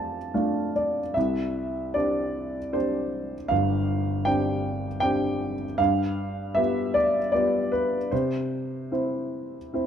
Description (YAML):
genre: classical, lyrical solo piano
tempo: 77 BPM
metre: 3/4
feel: rubato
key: C major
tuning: A4 = 440 Hz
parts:
  - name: dark baby grand piano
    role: solo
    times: 0.0-9.9 s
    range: G1 to A5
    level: -24 LUFS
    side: equal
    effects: none
room: wet spring reverb, RT60 1.8 s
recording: heard from further back in the room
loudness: -24 LUFS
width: side -8 dB against mid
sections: 0.0-9.9 A section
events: grand piano fill 0.0-1.2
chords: 0.0 F6; 1.2 Csus2; 5.8 G7; 8.1 C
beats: 0.34 | 1.16 1.95 2.73 | 3.50 4.26 5.02 | 5.79 6.56 7.34 | 8.12 8.91 9.74